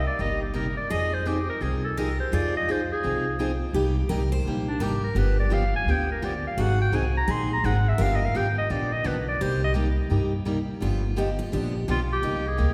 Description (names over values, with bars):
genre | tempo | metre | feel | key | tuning
acoustic string swing (jazz manouche) | 169 BPM | 4/4 | swing 61% on 8ths | C minor | A4 = 440 Hz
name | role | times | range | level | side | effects
bright clarinet | melody | 0.0-9.7, 11.9-12.7 s | D4 to C6 | -30 LUFS | equal | none
picked steel-string acoustic guitar | second line | 0.0-12.7 s | Eb4 to C5 | -36 LUFS | equal | none
upright bass | bass | 0.0-12.7 s | G1 to G2 | -28 LUFS | equal | none
picked steel-string acoustic guitar | accompaniment | 0.2-12.7 s | C3 to Ab4 | -32 LUFS | equal | none
room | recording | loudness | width
wet concert hall reverb, RT60 2.4 s | recorded in a church or concert hall | -25 LUFS | mono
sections
0.0-12.2 A section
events
clarinet solo 0.0-12.2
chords
0.0 Cm7; 0.9 Fm7; 3.7 Cm7; 5.2 G7; 6.6 Ab7; 8.0 G7#9; 9.4 Cm7; 10.8 G7#9